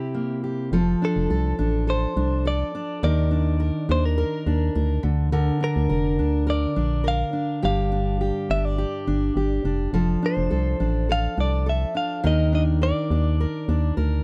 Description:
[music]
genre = acoustic pop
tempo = 104 BPM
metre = 4/4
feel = straight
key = F major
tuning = A4 = 441 Hz
[part]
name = direct-recorded clean electric guitar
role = melody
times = 0.0-13.9 s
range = G4 to F5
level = -31 LUFS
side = equal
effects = none
[part]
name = fingerpicked steel-string acoustic guitar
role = accompaniment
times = 0.0-14.2 s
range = G2 to Bb4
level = -27 LUFS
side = equal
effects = none
[part]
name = organ-like FM bass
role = bass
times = 0.7-14.2 s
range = F1 to Eb2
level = -25 LUFS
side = equal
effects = none
[sound]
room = little or no reverb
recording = dry, close 1970s-style studio recording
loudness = -23 LUFS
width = mono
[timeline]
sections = 0.7-14.2 A section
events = none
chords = 0.0 C7; 0.7 F6; 3.0 Eb5; 5.0 Bb; 7.6 G5; 9.9 F6; 12.2 Eb5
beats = 0.15 | 0.72 1.30 1.88 2.45 | 3.02 3.60 4.18 4.75 | 5.33 5.90 6.48 7.06 | 7.63 8.21 8.79 9.36 | 9.94 10.52 11.09 11.67 | 12.25 12.82 13.40 13.97

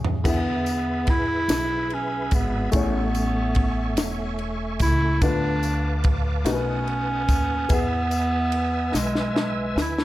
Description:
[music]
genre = slow gospel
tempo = 48 BPM (dotted quarters)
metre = 6/8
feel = straight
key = unclear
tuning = A4 = 439 Hz
[part]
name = dark upright piano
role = accompaniment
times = 0.0-10.0 s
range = A2 to E5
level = -31 LUFS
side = left 3 dB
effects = none
[part]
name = upright bass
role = bass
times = 0.0-10.0 s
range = E1 to E2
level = -27 LUFS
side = equal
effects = none
[part]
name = crisp fusion drum kit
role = drums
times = 0.0-10.0 s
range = crash cymbal, kick drum, ride cymbal, snare drum, toms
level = -25 LUFS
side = equal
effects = none
[part]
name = bright tonewheel organ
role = sustained chords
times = 0.2-10.0 s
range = A3 to E6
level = -32 LUFS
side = right 2 dB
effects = slow rotary speaker, chorus vibrato
[part]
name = clear clarinet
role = melody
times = 0.3-10.0 s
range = G#3 to E4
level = -25 LUFS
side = right 1 dB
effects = none
[part]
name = tambourine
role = percussion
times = 0.3-10.0 s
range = none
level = -38 LUFS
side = left 8 dB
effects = none
[sound]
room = light reverb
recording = none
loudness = -21 LUFS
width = side -16 dB against mid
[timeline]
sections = 0.0-10.0 A section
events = drum fill 0.0, 8.9-10.0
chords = 0.2 E7; 2.7 Amaj7; 5.2 Dm6; 6.5 B7; 7.7 E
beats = | 0.25 1.49 | 2.73 3.97 | 5.21 6.45 | 7.70 8.94

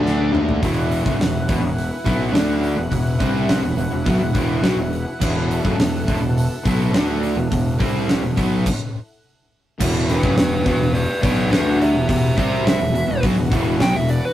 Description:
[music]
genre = hard rock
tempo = 105 BPM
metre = 4/4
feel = straight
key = E minor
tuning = A4 = 441 Hz
[part]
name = dark smooth lead guitar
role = melody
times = 0.0-0.3, 10.1-14.3 s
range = D4 to G5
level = -22 LUFS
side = right 1 dB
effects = overdrive
[part]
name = lush unison pad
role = sustained chords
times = 0.0-14.3 s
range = E3 to F#5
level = -30 LUFS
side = left 1 dB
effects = chorus
[part]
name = distorted electric guitar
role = riff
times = 0.0-14.2 s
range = E2 to D4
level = -25 LUFS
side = left 4 dB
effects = distortion
[part]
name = overdriven electric guitar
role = riff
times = 0.0-14.2 s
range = E2 to D4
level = -27 LUFS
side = equal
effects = none
[part]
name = overdriven semi-hollow guitar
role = riff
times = 0.0-14.2 s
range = E2 to D4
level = -24 LUFS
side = right 4 dB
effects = none
[part]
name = fuzz fingered electric bass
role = bass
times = 0.0-14.2 s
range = E1 to D#2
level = -23 LUFS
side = equal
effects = overdrive
[part]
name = gated 80s drum kit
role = drums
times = 0.1-14.2 s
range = crash cymbal, hi-hat, kick drum, snare drum, toms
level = -22 LUFS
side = equal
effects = none
[sound]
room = moderate studio reverb, RT60 0.5 s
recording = rough rehearsal-room recording, tube saturation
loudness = -17 LUFS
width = side -12 dB against mid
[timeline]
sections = 0.6-9.8 A section; 9.8-14.3 B section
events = drum fill 0.0-0.6; stop 8.7-9.8; lead electric guitar solo 9.8-14.3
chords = 0.0 D5; 0.6 Em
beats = 0.05 | 0.62 1.20 1.77 2.35 | 2.92 3.49 4.07 4.64 | 5.22 5.79 6.36 6.94 | 7.51 8.08 8.66 9.23 | 9.80 10.37 10.94 11.51 | 12.09 12.65 13.23 13.80

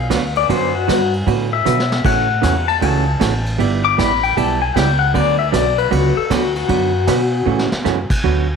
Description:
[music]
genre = country, western swing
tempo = 155 BPM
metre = 4/4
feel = swing 64% on 8ths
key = D major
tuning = A4 = 439 Hz
[part]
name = pedal steel guitar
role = second line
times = 0.0-7.7 s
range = F#4 to D6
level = -18 LUFS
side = left 10 dB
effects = none
[part]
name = upright bass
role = bass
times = 0.0-8.6 s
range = G1 to B2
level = -20 LUFS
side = equal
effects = none
[part]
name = vintage hollow-body jazz guitar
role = accompaniment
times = 0.1-8.5 s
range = C#3 to B4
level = -20 LUFS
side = right 14 dB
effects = none
[part]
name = vintage brush drum kit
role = drums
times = 0.1-8.4 s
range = crash cymbal, hi-hat, kick drum, ride cymbal, snare drum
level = -23 LUFS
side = equal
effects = none
[sound]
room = moderate echo chamber reverb, RT60 1.3 s, small room ambience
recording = 1960s-style stereo with parts hard left and right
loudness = -14 LUFS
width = side -6 dB against mid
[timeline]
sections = 0.0-8.2 A section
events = pedal steel guitar solo 0.0-8.2; drum fill 1.7-2.0, 7.5-7.9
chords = 0.0 D6; 2.0 A6; 3.6 G6; 5.1 D6; 7.5 A6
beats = 0.11 | 0.49 0.88 1.27 1.66 | 2.05 2.44 2.82 3.21 | 3.60 3.98 4.37 4.76 | 5.15 5.54 5.92 6.31 | 6.70 7.08 7.47 7.86 | 8.24

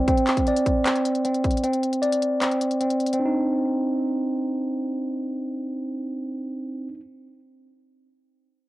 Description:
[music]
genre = hip hop, trap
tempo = 154 BPM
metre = 4/4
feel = half-time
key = C minor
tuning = A4 = 440 Hz
[part]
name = mellow tine electric piano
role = arpeggios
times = 0.0-7.0 s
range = C4 to D5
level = -23 LUFS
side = right 1 dB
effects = low-pass filter, cassette tape, analog delay
[part]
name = trap drum kit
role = drums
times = 0.1-3.2 s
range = handclaps, hi-hat, kick drum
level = -26 LUFS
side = left 1 dB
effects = cassette tape
[sound]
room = little or no reverb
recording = home recording on cassette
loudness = -22 LUFS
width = side -17 dB against mid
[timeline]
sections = 0.1-3.2 A section; 3.2-6.3 B section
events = none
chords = 0.1 Csus2; 3.2 Cmadd9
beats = | 0.08 0.47 0.86 1.25 | 1.64 2.03 2.42 2.81 | 3.19 3.58 3.97 4.36 | 4.75 5.14 5.53 5.92

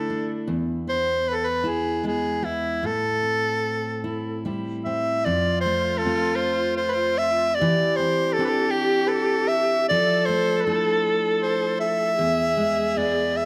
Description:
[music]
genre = celtic folk, Celtic slow air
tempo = 78 BPM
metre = 3/4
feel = rubato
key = unclear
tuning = A4 = 441 Hz
[part]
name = bright soprano saxophone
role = melody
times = 0.0-13.5 s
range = E4 to E5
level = -25 LUFS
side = equal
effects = none
[part]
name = picked steel-string acoustic guitar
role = accompaniment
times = 0.0-13.5 s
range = E2 to G#4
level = -30 LUFS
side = equal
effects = none
[part]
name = warm viola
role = second line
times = 5.3-13.5 s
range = F4 to A4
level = -28 LUFS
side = equal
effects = none
[sound]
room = moderate scoring stage reverb, RT60 1.5 s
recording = none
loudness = -23 LUFS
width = mono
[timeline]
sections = 0.0-5.3 A section; 5.3-13.5 B section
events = none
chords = 0.5 E; 2.8 Am7; 5.3 F; 7.6 Cadd9/E; 9.9 Dmadd9/F; 12.2 E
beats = | 0.49 1.25 2.02 | 2.82 3.63 4.44 | 5.26 6.04 6.82 | 7.61 8.37 9.13 | 9.90 10.66 11.42 | 12.18 12.95

